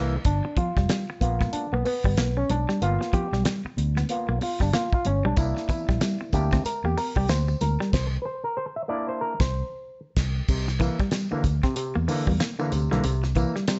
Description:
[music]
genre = funk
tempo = 94 BPM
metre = 4/4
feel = swing 60% on 16ths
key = unclear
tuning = A4 = 440 Hz
[part]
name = overdriven clav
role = stabs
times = 0.0-13.8 s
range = C3 to E5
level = -31 LUFS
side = equal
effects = auto-wah, slapback echo
[part]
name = fingered electric bass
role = bass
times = 0.0-13.4 s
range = F1 to E2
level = -28 LUFS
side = equal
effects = none
[part]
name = damped 70s drum kit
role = drums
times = 0.2-13.8 s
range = crash cymbal, hi-hat, kick drum, snare drum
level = -29 LUFS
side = equal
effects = none
[part]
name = congas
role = percussion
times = 0.3-7.8 s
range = none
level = -39 LUFS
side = equal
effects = none
[part]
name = semi-hollow electric guitar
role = riff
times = 0.4-13.8 s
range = E3 to C4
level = -32 LUFS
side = equal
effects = tremolo
[part]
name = tambourine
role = percussion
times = 5.4-13.8 s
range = none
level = -48 LUFS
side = equal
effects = none
[sound]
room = light reverb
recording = nothing above 7.9 kHz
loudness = -25 LUFS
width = mono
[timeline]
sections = 0.2-10.5 A section; 10.5-13.8 B section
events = band accent 0.0, 7.9-10.5; clav solo 0.2-10.5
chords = 0.2 G7#9; 5.4 C9

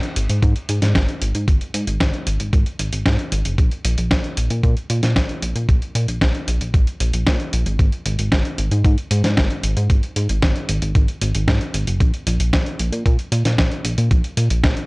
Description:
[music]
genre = italo disco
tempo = 114 BPM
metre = 4/4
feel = straight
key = unclear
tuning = A4 = 440 Hz
[part]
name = dusty soul sampler-style drum kit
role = drums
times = 0.0-14.9 s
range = hi-hat, snare drum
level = -23 LUFS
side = equal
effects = none
[part]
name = chorused synth bass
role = bass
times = 0.2-14.8 s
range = Gb1 to Bb2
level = -20 LUFS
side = equal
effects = tube saturation
[part]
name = electronic kick drum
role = drums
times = 0.4-14.7 s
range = none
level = -17 LUFS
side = equal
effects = none
[sound]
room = little or no reverb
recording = dry, gritty hardware recording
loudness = -16 LUFS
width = side -28 dB against mid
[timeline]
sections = 0.0-14.9 A section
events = none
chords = none

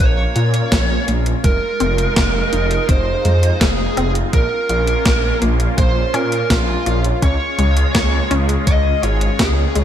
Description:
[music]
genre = synthwave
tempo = 83 BPM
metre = 4/4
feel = straight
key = Bb minor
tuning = A4 = 440 Hz
[part]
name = smooth overdriven lead guitar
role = melody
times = 0.0-9.8 s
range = F4 to Eb5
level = -21 LUFS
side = right 2 dB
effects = ping-pong delay
[part]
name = lush unison pad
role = sustained chords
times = 0.0-9.8 s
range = Ab3 to F4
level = -25 LUFS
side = equal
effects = chorus, phaser, sidechain pumping
[part]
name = wide detuned saw bass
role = bass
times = 0.0-9.8 s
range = F1 to Bb2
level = -18 LUFS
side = equal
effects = chorus
[part]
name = clean 12-bit digital drum machine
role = drums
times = 0.0-9.8 s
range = hi-hat, snare drum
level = -21 LUFS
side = equal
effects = overdrive, gated reverb
[part]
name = electronic kick drum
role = drums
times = 0.0-9.5 s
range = none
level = -17 LUFS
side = equal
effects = overdrive
[part]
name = analog pluck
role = arpeggios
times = 0.4-9.8 s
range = Ab3 to F4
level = -26 LUFS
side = left 3 dB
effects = chorus, digital delay
[sound]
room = light reverb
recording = bright 1980s-style digital production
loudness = -14 LUFS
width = side -10 dB against mid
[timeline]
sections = 0.0-9.8 A section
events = filter sweep on synth arpeggio sound 0.0-9.8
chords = 0.0 Bbm; 1.4 Fm7; 4.3 Bbm; 7.2 Db

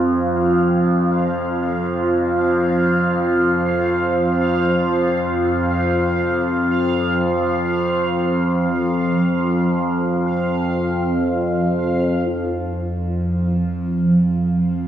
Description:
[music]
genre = dark ambient drone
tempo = free time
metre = none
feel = none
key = unclear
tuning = A4 = 441 Hz
[part]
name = dark analog pad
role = sustained chords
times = 0.0-14.9 s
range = C4 to C5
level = -20 LUFS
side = left 1 dB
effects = chorus, phaser
[part]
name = overtone-sweeping drone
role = drone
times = 0.0-14.9 s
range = F2 to F3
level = -20 LUFS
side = right 1 dB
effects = chorus, built-in reverb, phaser
[part]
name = bubbling stepped-filter texture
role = texture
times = 0.0-14.9 s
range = F5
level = -27 LUFS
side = right 2 dB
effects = chorus, built-in reverb
[sound]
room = wet echo chamber reverb, RT60 2.4 s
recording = studio reverb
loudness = -17 LUFS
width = side -10 dB against mid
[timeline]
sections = 0.0-12.3 A section; 12.3-14.9 A section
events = none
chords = 0.0 F5

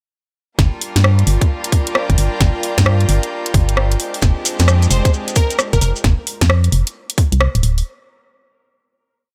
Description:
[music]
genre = UK garage, two-step garage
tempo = 132 BPM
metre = 4/4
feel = swing 64% on 16ths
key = F dorian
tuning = A4 = 440 Hz
[part]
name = bright studio violin section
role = sustained chords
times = 0.6-6.0 s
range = G3 to G4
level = -30 LUFS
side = equal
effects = sidechain pumping
[part]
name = organ-like FM bass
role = bass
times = 0.6-7.8 s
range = D1 to G2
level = -16 LUFS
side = equal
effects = none
[part]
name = electronic kick drum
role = drums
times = 0.6-7.3 s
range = none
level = -17 LUFS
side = equal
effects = overdrive, small room ambience
[part]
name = garage drum kit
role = drums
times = 0.6-7.8 s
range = hi-hat, rim click, snare drum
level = -22 LUFS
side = equal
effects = overdrive, small room ambience
[part]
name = airy breathy pad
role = texture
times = 0.6-6.0 s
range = Ab3 to G5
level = -29 LUFS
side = equal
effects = chorus, sidechain pumping
[part]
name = maracas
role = percussion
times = 4.2-6.0 s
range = none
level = -25 LUFS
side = equal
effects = none
[part]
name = plucky unison lead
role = melody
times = 4.9-5.9 s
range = Bb4 to C5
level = -27 LUFS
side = equal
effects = dub echo
[sound]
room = digital ambience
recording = none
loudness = -16 LUFS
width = mono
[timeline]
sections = 0.6-7.9 drop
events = drop 0.6-7.9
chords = 0.6 Gm7; 4.0 Fm69

